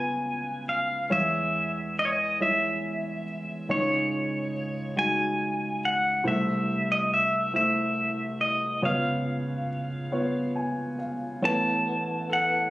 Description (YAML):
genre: acoustic folk-pop ballad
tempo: 46 BPM (dotted quarters)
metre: 6/8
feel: straight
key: unclear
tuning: A4 = 440 Hz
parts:
  - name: pedal steel guitar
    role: melody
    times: 0.0-12.7 s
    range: C#5 to A5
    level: -26 LUFS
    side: equal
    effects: plate reverb
  - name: dark upright piano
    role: accompaniment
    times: 0.0-12.7 s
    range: A1 to G#5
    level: -29 LUFS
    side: equal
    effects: none
  - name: electric guitar through a small old amp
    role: arpeggios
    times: 11.4-12.7 s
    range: E3 to A4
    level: -33 LUFS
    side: right 2 dB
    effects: tremolo
room: moderate studio reverb, RT60 0.6 s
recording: recorded on a phone in the room, club reverb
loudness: -24 LUFS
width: side -17 dB against mid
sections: 0.0-11.4 A section; 11.4-12.7 B section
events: none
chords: 0.0 C#7; 1.1 E6; 3.7 C#sus2; 6.2 Am/C; 8.8 C#7; 11.4 Aadd9